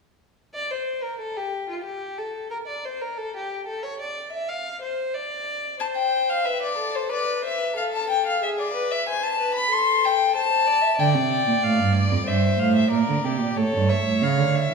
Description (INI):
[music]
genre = classical, baroque-style fugue for string quartet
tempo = 92 BPM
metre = 4/4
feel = straight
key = unclear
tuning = A4 = 440 Hz
[part]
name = rich violin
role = second line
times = 0.5-14.7 s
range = F4 to F5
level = -27 LUFS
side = left 1 dB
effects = none
[part]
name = rich violin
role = melody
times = 5.8-14.7 s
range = C5 to C6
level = -22 LUFS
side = left 4 dB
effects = none
[part]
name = dark cello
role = bass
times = 11.0-14.7 s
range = F2 to D3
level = -20 LUFS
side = right 5 dB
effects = none
[sound]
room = wet recital hall reverb, RT60 1.7 s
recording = none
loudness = -21 LUFS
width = side -4 dB against mid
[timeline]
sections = 0.5-14.7 A section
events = none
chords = 0.5 N.C.; 5.8 Am; 8.4 E7/G# (rootless); 9.7 Am; 11.0 Dm; 12.3 Edim/G; 13.6 A7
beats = | 0.55 1.21 1.87 2.52 | 3.18 3.84 4.49 5.14 | 5.80 6.46 7.11 7.76 | 8.42 9.07 9.71 10.35 | 10.99 11.63 12.27 12.92 | 13.57 14.22